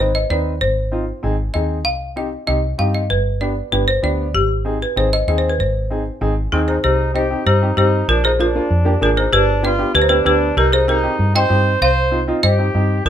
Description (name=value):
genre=latin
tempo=193 BPM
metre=4/4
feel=straight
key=C minor from 6.8 s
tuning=A4 = 440 Hz
part: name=folk marimba with hard mallets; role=melody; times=0.0-13.1 s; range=Eb4 to G5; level=-18 LUFS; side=equal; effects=none
part: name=warm upright piano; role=accompaniment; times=0.0-13.0 s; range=Bb3 to B4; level=-23 LUFS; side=equal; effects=none
part: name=fingered electric bass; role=bass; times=0.0-13.1 s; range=G1 to G2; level=-19 LUFS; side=equal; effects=none
part: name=warm trumpet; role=second line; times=6.5-13.1 s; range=C4 to C5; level=-22 LUFS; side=equal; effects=none
room=light reverb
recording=minimal, uncompressed stereo recording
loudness=-15 LUFS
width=side -10 dB against mid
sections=0.0-6.8 A section; 6.8-13.1 B section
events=none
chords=0.0 Ab; 1.9 Cm; 3.1 G; 4.3 Ab; 6.8 Cm; 8.1 Bb; 9.3 G7; 10.6 Cm